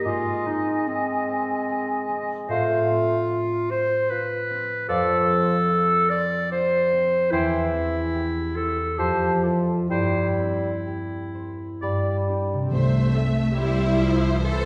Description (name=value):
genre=classical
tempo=62-77 BPM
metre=3/4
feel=rubato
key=C major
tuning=A4 = 440 Hz
part: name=bright clarinet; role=second line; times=0.0-12.2 s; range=C4 to D5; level=-26 LUFS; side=equal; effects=none
part: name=warm oboe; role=second line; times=0.0-12.2 s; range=C5 to Eb5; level=-35 LUFS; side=equal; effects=none
part: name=concert harp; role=arpeggios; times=0.0-14.7 s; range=E2 to C5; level=-29 LUFS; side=equal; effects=none
part: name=mellow hollow silver concert flute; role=second line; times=0.1-12.2 s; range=F5 to B5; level=-33 LUFS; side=equal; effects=none
part: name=mellow bassoon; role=accompaniment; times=0.1-12.6 s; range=E3 to A3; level=-30 LUFS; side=equal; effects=none
part: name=clear symphonic violin section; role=melody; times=12.7-14.7 s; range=C5 to E5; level=-36 LUFS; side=equal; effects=none
part: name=warm symphonic violin section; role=second line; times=12.7-14.7 s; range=C5 to E5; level=-34 LUFS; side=equal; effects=none
part: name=rich symphonic viola section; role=accompaniment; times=12.7-14.7 s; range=E3 to A3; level=-28 LUFS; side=equal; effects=none
part: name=rich studio double bass section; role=bass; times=12.7-14.7 s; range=C2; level=-30 LUFS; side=equal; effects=none
part: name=timpani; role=percussion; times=12.7-14.0 s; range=C3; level=-31 LUFS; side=equal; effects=none
part: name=rich symphonic cello section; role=bass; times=13.6-14.7 s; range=E4 to A4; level=-28 LUFS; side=equal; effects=none
room=wet scoring stage reverb, RT60 1.6 s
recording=recorded in a church or concert hall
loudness=-23 LUFS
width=mono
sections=0.0-12.7 A section; 12.7-14.7 B section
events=none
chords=0.1 Ab; 2.5 F/A; 4.9 F6; 7.3 C/E; 9.0 Fmaj7; 9.9 C/G; 11.8 G; 12.7 C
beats=| 0.06 0.88 1.69 | 2.49 3.31 4.11 | 4.89 5.69 6.52 | 7.33 8.14 8.99 | 9.90 10.87 11.82 | 12.71 13.56 14.44